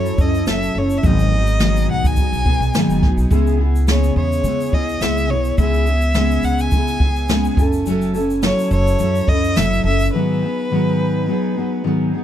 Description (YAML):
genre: acoustic pop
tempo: 106 BPM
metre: 4/4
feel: swing 55% on 16ths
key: C# minor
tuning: A4 = 440 Hz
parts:
  - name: rich violin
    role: melody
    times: 0.0-11.8 s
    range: B4 to G#5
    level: -23 LUFS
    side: equal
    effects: ping-pong delay
  - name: fingerpicked steel-string acoustic guitar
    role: accompaniment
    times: 0.0-12.2 s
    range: G#2 to A4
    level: -19 LUFS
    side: left 1 dB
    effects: double-tracked left and right
  - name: upright bass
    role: bass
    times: 0.0-10.1 s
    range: F#1 to C#3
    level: -20 LUFS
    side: equal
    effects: none
  - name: jazz brush drum kit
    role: drums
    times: 0.1-10.1 s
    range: kick drum, shaker, snare drum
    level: -20 LUFS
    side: equal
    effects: none
room: small room ambience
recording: dark, warm production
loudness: -15 LUFS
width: side -10 dB against mid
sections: 0.0-12.2 A section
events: break 10.1-12.2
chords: 0.0 F#m7; 1.0 G#m7; 3.3 C#m7; 7.6 F#m7; 10.1 G#m7